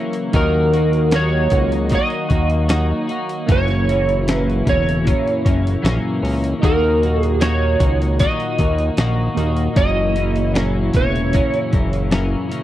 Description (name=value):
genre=indie pop, bedroom pop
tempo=76 BPM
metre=4/4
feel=straight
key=unclear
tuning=A4 = 439 Hz
part: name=soft electric-piano-like synth keys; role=accompaniment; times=0.0-12.6 s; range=A#3 to D#5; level=-28 LUFS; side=right 5 dB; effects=chorus, phaser
part: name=twelve-string electric guitar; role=accompaniment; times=0.0-12.6 s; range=F#2 to F#4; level=-24 LUFS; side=left 3 dB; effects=analog chorus, warbly pitch drift
part: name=lush unison pad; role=sustained chords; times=0.0-12.6 s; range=A#2 to F#4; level=-26 LUFS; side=left 2 dB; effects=chorus
part: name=dusty soul sampler-style drum kit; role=drums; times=0.1-12.6 s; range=hi-hat, kick drum, snare drum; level=-19 LUFS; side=equal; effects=none
part: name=fat analog bass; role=bass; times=0.3-12.4 s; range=E1 to D#2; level=-19 LUFS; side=equal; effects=none
part: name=electric slide guitar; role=melody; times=0.4-12.1 s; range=A#4 to D#5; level=-21 LUFS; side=right 2 dB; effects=analog chorus, slapback echo
room=little or no reverb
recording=dry, close 1970s-style studio recording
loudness=-15 LUFS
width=side -13 dB against mid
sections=0.0-12.6 A section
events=none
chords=0.3 D#m; 3.5 F#7; 6.6 D#m; 9.8 F#7